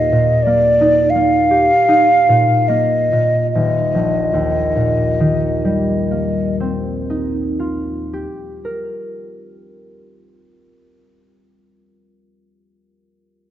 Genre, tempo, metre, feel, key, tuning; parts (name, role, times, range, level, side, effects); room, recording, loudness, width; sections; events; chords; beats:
classical, impressionist duo for flute and harp; 34-45 BPM; 4/4; rubato; Eb major; A4 = 440 Hz
mellow hollow silver concert flute; melody; 0.0-6.6 s; D5 to F5; -14 LUFS; equal
concert harp; accompaniment; 0.0-11.5 s; Eb1 to Bb4; -18 LUFS; equal
moderate scoring stage reverb, RT60 1.7 s; nothing above 7.8 kHz; -13 LUFS; side -12 dB against mid
0.0-3.5 A section; 3.5-10.1 B section
slowing down 0.0-3.5
0.0 Eb; 3.5 Eb69
0.44 1.86 | 3.54 5.17 6.81 8.43